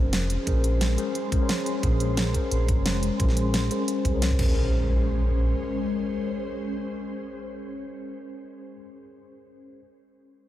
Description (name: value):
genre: liquid drum and bass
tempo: 176 BPM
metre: 4/4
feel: straight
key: Bb minor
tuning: A4 = 436 Hz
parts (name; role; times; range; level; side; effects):
- mellow tine electric piano; accompaniment; 0.0-9.8 s; Db4 to Db5; -31 LUFS; left 1 dB; medium stereo tremolo, low-pass filter, diffuse ambient delay
- ethereal airy pad; sustained chords; 0.0-8.0 s; Ab3 to C6; -32 LUFS; left 2 dB; ensemble chorus, built-in reverb, phaser, sidechain pumping
- smooth gliding synth bass; bass; 0.0-5.5 s; F1 to C2; -25 LUFS; equal; none
- pop drum kit; drums; 0.1-4.5 s; crash cymbal, hi-hat, snare drum; -30 LUFS; equal; small room ambience
- electronic kick drum; drums; 0.5-4.5 s; none; -24 LUFS; equal; small room ambience
- impact; sound effects; 4.4-8.8 s; none; -32 LUFS; equal; none
room: moderate huge ambient reverb, RT60 4.1 s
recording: dreamy mix soaked in reverb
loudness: -22 LUFS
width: side -13 dB against mid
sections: 0.0-4.6 A section; 4.6-7.3 B section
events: filter sweep on tine electric piano 0.0-4.6; filter sweep on ambient pad 0.0-4.6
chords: 0.0 Bbm9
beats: 0.13 | 0.47 0.81 1.15 1.49 | 1.83 2.17 2.51 2.85 | 3.20 3.54 3.88 4.22 | 4.56 4.90 5.24 5.58 | 5.92 6.26 6.61 6.95